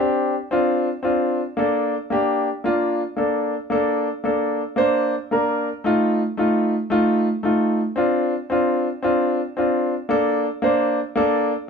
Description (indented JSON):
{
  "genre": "soul",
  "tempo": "113 BPM",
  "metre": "4/4",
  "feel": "straight",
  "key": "Bb major",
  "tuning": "A4 = 440 Hz",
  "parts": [
    { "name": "warm concert grand piano", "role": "solo", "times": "0.0-11.5 s", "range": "A3 to Bb5", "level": "-18 LUFS", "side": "equal", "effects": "none" }
  ],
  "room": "moderate studio ambience, RT60 0.5 s",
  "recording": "band playing live in one room",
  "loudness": "-18 LUFS",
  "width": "side -6 dB against mid",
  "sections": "0.0-10.1 A section; 10.1-11.7 B section",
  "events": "grand piano fill 5.1-5.9",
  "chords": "0.0 Dm7; 1.6 Bbmaj7; 5.9 F7; 8.0 Dm7; 10.1 Bbmaj7"
}